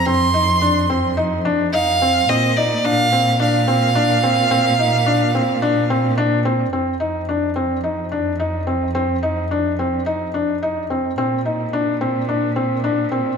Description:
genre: piano and strings electronica.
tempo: 108 BPM.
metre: 4/4.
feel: straight.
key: unclear.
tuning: A4 = 443 Hz.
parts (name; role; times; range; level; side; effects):
clear violin; melody; 0.0-6.1 s; D5 to C6; -18 LUFS; right 3 dB; digital delay.
warm studio cello section; bass; 0.0-13.4 s; F2 to Bb2; -22 LUFS; right 1 dB; tube saturation.
felt-muted upright piano; riff; 0.1-13.3 s; C4 to Eb4; -19 LUFS; left 2 dB; digital delay.
room: moderate scoring stage reverb, RT60 1.4 s, small room ambience.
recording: none.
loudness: -16 LUFS.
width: side -6 dB against mid.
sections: 0.0-6.7 A section; 6.7-13.4 B section.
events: none.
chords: 0.0 F7(no3); 2.3 Bbadd9; 6.7 F5; 11.2 Bbadd9.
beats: | 0.07 0.62 1.18 1.73 | 2.29 2.84 3.40 3.95 | 4.51 5.07 5.62 6.18 | 6.73 7.29 7.84 8.40 | 8.95 9.51 10.06 10.62 | 11.18 11.73 12.29 12.84.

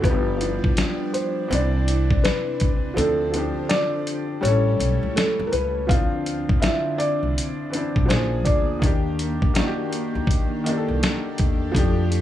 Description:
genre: lo-fi hip hop.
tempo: 82 BPM.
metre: 4/4.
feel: swing 64% on 16ths.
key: unclear.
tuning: A4 = 441 Hz.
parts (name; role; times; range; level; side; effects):
felt-muted upright piano; melody; 0.0-9.5 s; A4 to F5; -26 LUFS; left 1 dB; plate reverb.
warm upright piano; accompaniment; 0.0-12.2 s; Eb3 to D5; -26 LUFS; left 1 dB; plate reverb.
string machine, violas; sustained chords; 0.0-12.2 s; C3 to D5; -30 LUFS; equal; ensemble chorus.
upright bass; bass; 0.0-12.2 s; G1 to F2; -24 LUFS; equal; none.
dusty soul sampler-style drum kit; drums; 0.0-12.2 s; hi-hat, kick drum, snare drum; -22 LUFS; equal; none.
room: light reverb.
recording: studio ambience.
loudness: -20 LUFS.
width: side -12 dB against mid.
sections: 0.0-5.9 A section; 5.9-12.2 B section.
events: kick muted 3.0-5.9.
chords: 0.0 G7; 1.5 Cmaj9; 3.0 Dm7; 4.4 A7; 5.9 Dm9; 8.1 Bb7; 8.8 Ebmaj7.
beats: | 0.04 0.77 1.50 2.23 | 2.96 3.70 4.43 5.16 | 5.89 6.62 7.36 8.09 | 8.82 9.55 10.28 11.01 | 11.75.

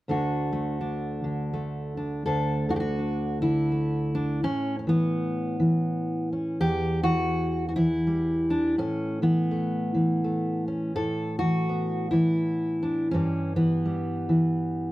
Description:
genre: folk, solo fingerstyle acoustic guitar.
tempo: 83 BPM.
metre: 3/4.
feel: swing 60% on 8ths.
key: D major.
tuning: A4 = 438 Hz.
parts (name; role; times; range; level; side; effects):
fingerpicked steel-string acoustic guitar; solo; 0.1-14.9 s; D2 to A4; -24 LUFS; equal; none.
room: light reverb.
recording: none.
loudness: -24 LUFS.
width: side -17 dB against mid.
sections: 0.1-2.3 A section; 2.3-14.9 B section.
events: none.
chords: 0.1 D; 2.3 D5; 4.4 A; 6.6 Emadd9; 8.8 A; 11.0 Asus2; 13.1 Em/G.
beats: | 0.08 0.81 1.53 | 2.25 2.98 3.71 | 4.43 5.15 5.88 | 6.60 7.33 8.05 | 8.78 9.51 10.23 | 10.96 11.68 12.41 | 13.13 13.86 14.58.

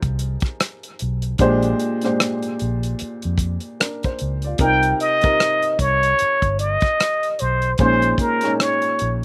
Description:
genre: R&B, neo-soul.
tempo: 75 BPM.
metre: 4/4.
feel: swing 59% on 16ths.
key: unclear.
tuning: A4 = 440 Hz.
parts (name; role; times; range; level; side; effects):
warm upright piano; accompaniment; 0.0-9.2 s; Bb2 to D5; -25 LUFS; equal; none.
vintage muted fingered electric bass; bass; 0.0-9.2 s; G1 to F2; -25 LUFS; equal; none.
warm soul drum kit; drums; 0.0-9.2 s; hi-hat, kick drum, rim click; -25 LUFS; equal; none.
trumpet with plunger mute; melody; 4.6-9.2 s; Bb4 to G5; -20 LUFS; equal; none.
room: little or no reverb.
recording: recorded outdoors, with no room sound.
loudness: -20 LUFS.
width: mono.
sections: 0.0-9.2 A section.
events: none.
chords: 0.0 Fm11; 1.4 Bb13; 4.6 Cm7; 7.8 Bbm11.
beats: 0.59 | 1.39 2.19 2.99 3.79 | 4.59 5.39 6.19 6.99 | 7.79 8.59.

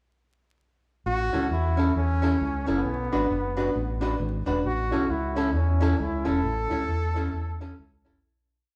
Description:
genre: ska.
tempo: 134 BPM.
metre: 4/4.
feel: swing 61% on 8ths.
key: A major.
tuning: A4 = 440 Hz.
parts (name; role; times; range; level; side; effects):
brilliant trombone; melody; 1.1-7.8 s; B3 to A4; -32 LUFS; equal; tape echo.
fingered electric bass; bass; 1.1-8.2 s; E1 to E2; -30 LUFS; equal; none.
archtop guitar, miked and amplified; accompaniment; 1.3-8.2 s; C#4 to B4; -31 LUFS; equal; none.
dark upright piano; stabs; 1.3-8.2 s; C#4 to B4; -34 LUFS; equal; none.
room: wet large studio reverb, RT60 1.3 s.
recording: band playing live in one room, vinyl crackle.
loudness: -26 LUFS.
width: mono.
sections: 1.1-8.2 A section.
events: fade-out 6.4-8.2.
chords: 1.1 A; 2.8 Bm; 4.6 A.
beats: | 1.06 1.50 1.95 2.40 | 2.85 3.30 3.74 4.19 | 4.64 5.09 5.54 5.99 | 6.44 6.88 7.33 7.79.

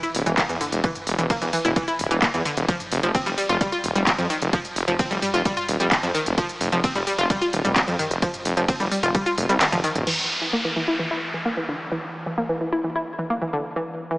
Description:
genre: driving peak-time techno.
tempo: 130 BPM.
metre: 4/4.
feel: straight.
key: unclear.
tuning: A4 = 440 Hz.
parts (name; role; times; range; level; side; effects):
analog pluck; riff; 0.0-14.2 s; D3 to F4; -24 LUFS; equal; chorus, sidechain pumping, tape echo.
techno drum kit; drums; 0.0-10.2 s; crash cymbal, handclaps, hi-hat, ride cymbal, toms; -26 LUFS; equal; overdrive, sidechain pumping on hats, sidechain pumping on toms, sidechain pumping on cymbals.
detuned saw bass; bass; 0.1-10.0 s; D1 to F2; -24 LUFS; equal; sidechain pumping.
electronic kick drum; drums; 0.4-9.2 s; none; -24 LUFS; equal; overdrive.
deep dark ambient pad; drone; 11.2-14.2 s; E3; -39 LUFS; equal; chorus, built-in reverb, sidechain pumping.
downlifter; sound effects; 10.1-13.8 s; none; -29 LUFS; equal; none.
room: moderate huge ambient reverb, RT60 4.2 s.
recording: small speaker sound.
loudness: -20 LUFS.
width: side -22 dB against mid.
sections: 0.0-10.1 A section; 10.1-14.2 B section.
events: drop 0.0-10.1; kick drops out 9.6-10.1; drum fill 9.6-10.1.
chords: 0.0 Dsus2; 2.7 F5; 10.1 N.C..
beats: 0.38 | 0.84 1.30 1.76 2.22 | 2.69 3.15 3.61 4.07 | 4.53 4.99 5.45 5.92 | 6.38 6.84 7.30 7.76 | 8.22 8.69 9.15 9.61 | 10.07 10.53 10.99 11.45 | 11.91 12.38 12.84 13.30 | 13.76.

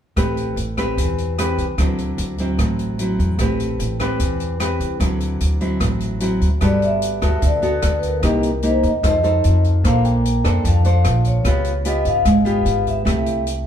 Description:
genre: bossa nova.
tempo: 149 BPM.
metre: 4/4.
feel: straight.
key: G major.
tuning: A4 = 443 Hz.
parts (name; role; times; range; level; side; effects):
nylon-string guitar; accompaniment; 0.2-13.7 s; A2 to C5; -21 LUFS; equal; none.
upright bass; bass; 0.2-13.6 s; G1 to F2; -20 LUFS; equal; none.
open jazz drum kit; drums; 0.2-13.6 s; hi-hat, kick drum, rim click; -24 LUFS; equal; none.
vibraphone with soft mallets; melody; 6.6-13.7 s; Bb4 to G5; -22 LUFS; left 2 dB; none.
room: moderate stone room reverb, RT60 1.4 s.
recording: band playing live in one room.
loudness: -16 LUFS.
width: side -9 dB against mid.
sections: 0.2-6.6 A section; 6.6-13.7 B section.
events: none.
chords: 0.2 Am9; 1.8 D9; 3.4 Am9; 5.0 D9; 6.6 Gmaj9; 8.2 Cm7; 9.0 F7; 9.8 Bbmaj9; 11.5 C#7#11; 13.1 C6.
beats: | 0.17 0.57 0.97 1.38 | 1.78 2.18 2.59 2.99 | 3.39 3.80 4.20 4.60 | 5.01 5.41 5.81 6.21 | 6.62 7.02 7.42 7.83 | 8.23 8.63 9.04 9.44 | 9.84 10.24 10.65 11.05 | 11.45 11.86 12.26 12.66 | 13.06 13.47.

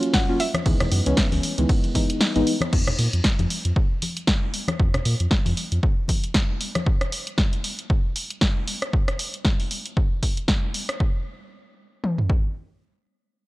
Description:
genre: deep house.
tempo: 116 BPM.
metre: 4/4.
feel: swing 57% on 16ths.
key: unclear.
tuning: A4 = 440 Hz.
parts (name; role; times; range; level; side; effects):
mallet-like synth pluck; melody; 0.0-2.2 s; Fb5 to Gb5; -32 LUFS; left 1 dB; chorus, tape echo.
deep mellow chord stab; stabs; 0.0-2.5 s; Eb3 to F4; -24 LUFS; equal; chorus, sidechain pumping, analog delay.
punchy analog drum machine; drums; 0.0-11.0 s; crash cymbal, hi-hat, ride cymbal, rim click, snare drum; -25 LUFS; equal; none.
punchy analog drum machine; drums; 0.1-12.4 s; kick drum, toms; -22 LUFS; equal; none.
congas; percussion; 0.5-6.8 s; none; -30 LUFS; left 2 dB; none.
sub bass with octave; bass; 0.7-5.8 s; Ab1 to Bb2; -22 LUFS; equal; sidechain pumping.
room: little or no reverb.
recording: dry, gritty hardware recording, cassette tape.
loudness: -20 LUFS.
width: side -19 dB against mid.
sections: 0.0-2.7 A section; 2.7-11.0 B section; 11.0-13.5 C section.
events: drop 0.0-2.7; kick drops out 2.2-2.7.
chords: 0.4 Dbm9; 2.7 Fsus4; 6.9 N.C..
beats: 0.14 | 0.66 1.18 1.69 2.21 | 2.73 3.24 3.76 4.28 | 4.79 5.31 5.83 6.35 | 6.86 7.38 7.90 8.42 | 8.93 9.45 9.97 10.48 | 11.00 11.52 12.04.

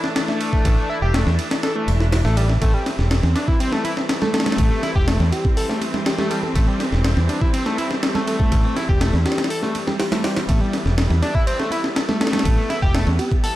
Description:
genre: breakbeat, breaks.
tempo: 122 BPM.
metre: 4/4.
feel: straight.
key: A minor.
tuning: A4 = 440 Hz.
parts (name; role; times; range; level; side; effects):
rich symphonic string section; sustained chords; 0.0-13.6 s; E3 to D4; -27 LUFS; left 1 dB; vintage 12-bit sampler grit, sidechain pumping.
breakbeat sampler-style drum kit; drums; 0.0-13.6 s; hi-hat, kick drum, ride cymbal, snare drum; -21 LUFS; equal; small room reverb.
overdriven synth lead; riff; 0.3-13.5 s; G3 to A4; -25 LUFS; equal; distortion, tube saturation, ping-pong delay.
fingered electric bass; bass; 0.7-13.2 s; E1 to E2; -19 LUFS; equal; none.
congas; percussion; 3.2-13.4 s; none; -30 LUFS; right 4 dB; none.
bell-like FM electric piano; melody; 4.2-13.4 s; G4 to A4; -30 LUFS; equal; chorus, small speaker sound, ping-pong delay.
room: light reverb.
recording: dark, warm production.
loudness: -17 LUFS.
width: side -15 dB against mid.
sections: 0.0-13.6 A section.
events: none.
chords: 0.0 Am.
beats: 0.16 | 0.65 1.14 1.64 2.13 | 2.62 3.11 3.60 4.09 | 4.58 5.08 5.57 6.06 | 6.55 7.04 7.54 8.03 | 8.52 9.01 9.50 9.99 | 10.49 10.98 11.47 11.96 | 12.45 12.95 13.44.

